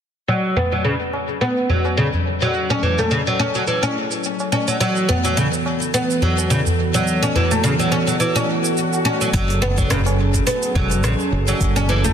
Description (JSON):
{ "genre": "organic downtempo", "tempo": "106 BPM", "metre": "4/4", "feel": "swing 56% on 16ths", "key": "F# minor", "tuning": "A4 = 445 Hz", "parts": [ { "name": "warm analog pad", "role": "sustained chords", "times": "0.3-12.1 s", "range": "E3 to A4", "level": "-25 LUFS", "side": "right 3 dB", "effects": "chorus, sidechain pumping" }, { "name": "oud", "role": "arpeggios", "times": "0.3-12.1 s", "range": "C#3 to C#4", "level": "-18 LUFS", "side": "equal", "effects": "low-pass filter, ping-pong delay" }, { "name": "organic electronic drum kit", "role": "drums", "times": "0.3-12.1 s", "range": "cabasa, hi-hat, rim click", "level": "-28 LUFS", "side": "right 5 dB", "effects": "overdrive, low-pass filter on perc, low-pass filter on hats, low-pass filter on snare, low-pass filter on room" }, { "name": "tabla", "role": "percussion", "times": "0.6-12.1 s", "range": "none", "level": "-25 LUFS", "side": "left 1 dB", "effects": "none" }, { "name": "swell", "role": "sound effects", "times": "8.5-9.3 s", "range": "none", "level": "-26 LUFS", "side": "left 4 dB", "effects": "none" }, { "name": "mellow fretless electric bass", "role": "bass", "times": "9.3-12.1 s", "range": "E1 to A1", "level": "-19 LUFS", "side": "equal", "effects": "tube saturation" }, { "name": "electronic kick drum", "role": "drums", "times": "9.3-11.7 s", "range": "none", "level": "-23 LUFS", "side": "equal", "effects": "none" } ], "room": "moderate lush hall reverb, RT60 1.9 s", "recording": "dense, heavily limited modern master", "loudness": "-16 LUFS", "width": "side -8 dB against mid", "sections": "0.3-9.3 A section; 9.3-12.1 B section", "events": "filter sweep on analog synth pad 0.3-9.3; swell 8.5-9.3", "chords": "0.3 F#madd9; 4.8 Esus4; 9.3 F#m9" }